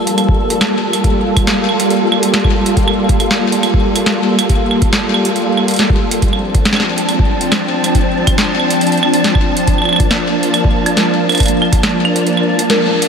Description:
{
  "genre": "IDM",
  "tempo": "139 BPM",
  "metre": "4/4",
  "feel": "straight",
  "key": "G minor",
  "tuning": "A4 = 440 Hz",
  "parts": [
    { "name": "soft string machine", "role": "sustained chords", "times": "0.0-13.1 s", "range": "F3 to A5", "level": "-14 LUFS", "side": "equal", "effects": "ensemble chorus" },
    { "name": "booming analog drum machine", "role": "drums", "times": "0.1-13.1 s", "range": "claves, hi-hat, snare drum", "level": "-16 LUFS", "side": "right 1 dB", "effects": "overdrive, ping-pong delay" },
    { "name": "electronic kick drum", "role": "drums", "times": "0.3-11.8 s", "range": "none", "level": "-15 LUFS", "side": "equal", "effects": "overdrive" },
    { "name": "warbly nostalgic lead", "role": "melody", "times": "12.7-13.1 s", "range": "Bb4", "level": "-15 LUFS", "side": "left 1 dB", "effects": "chorus, ping-pong delay" }
  ],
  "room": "wet huge ambient reverb, RT60 8.5 s",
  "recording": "dreamy mix soaked in reverb",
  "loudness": "-11 LUFS",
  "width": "side -6 dB against mid",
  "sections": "0.0-13.1 A section",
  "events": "kick drops out 12.3-13.1; band accent 12.7",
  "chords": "0.0 Gm9; 6.2 Dm7; 9.7 Bbmaj7",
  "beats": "0.18 0.61 | 1.04 1.47 1.91 2.34 | 2.77 3.20 3.63 4.06 | 4.50 4.93 5.36 5.79 | 6.22 6.65 7.08 7.52 | 7.95 8.38 8.81 9.24 | 9.68 10.11 10.54 10.97 | 11.40 11.83 12.27 12.70"
}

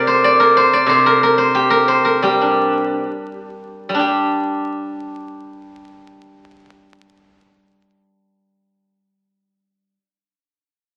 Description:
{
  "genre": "chinese traditional, Chinese solo plucked strings",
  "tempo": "56-92 BPM",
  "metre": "2/4",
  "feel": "rubato",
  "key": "G yu mode",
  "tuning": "A4 = 440 Hz",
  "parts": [
    { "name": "steel-string zither", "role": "solo", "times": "0.0-10.0 s", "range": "C3 to D5", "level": "-16 LUFS", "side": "equal", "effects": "none" }
  ],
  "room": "wet club reverb, RT60 0.7 s",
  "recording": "very old 78 rpm record, vinyl crackle",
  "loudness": "-15 LUFS",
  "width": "mono",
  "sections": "0.0-4.0 A section; 4.0-8.1 B section",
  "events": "slowing down 0.9-4.0",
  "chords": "none",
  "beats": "0.24 | 0.90 1.55 | 2.24 3.04 | 4.01 5.06 | 6.07 7.09"
}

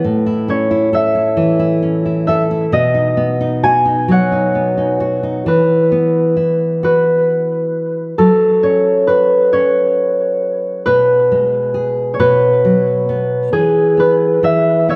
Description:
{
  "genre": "children's music, lullaby",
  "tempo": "45 BPM (dotted quarters)",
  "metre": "6/8",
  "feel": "straight",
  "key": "E major",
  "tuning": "A4 = 440 Hz",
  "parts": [
    { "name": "concert harp", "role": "melody", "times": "0.0-15.0 s", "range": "G#4 to G#5", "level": "-16 LUFS", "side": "equal", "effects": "tape echo" },
    { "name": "nylon-string guitar", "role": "accompaniment", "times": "0.0-15.0 s", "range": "A2 to A4", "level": "-19 LUFS", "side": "equal", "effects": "none" }
  ],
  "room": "moderate recital hall reverb, RT60 1.5 s",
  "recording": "none",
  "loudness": "-14 LUFS",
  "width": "mono",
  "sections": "0.0-5.5 A section; 5.5-15.0 B section",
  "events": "none",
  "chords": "0.0 A; 2.7 B; 5.5 Esus2; 8.2 F#5; 10.9 G#m/B; 12.2 B5; 13.5 E5",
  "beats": "| 0.04 1.37 | 2.71 4.08 | 5.46 6.83 | 8.18 9.52 | 10.86 12.19 | 13.52 14.88"
}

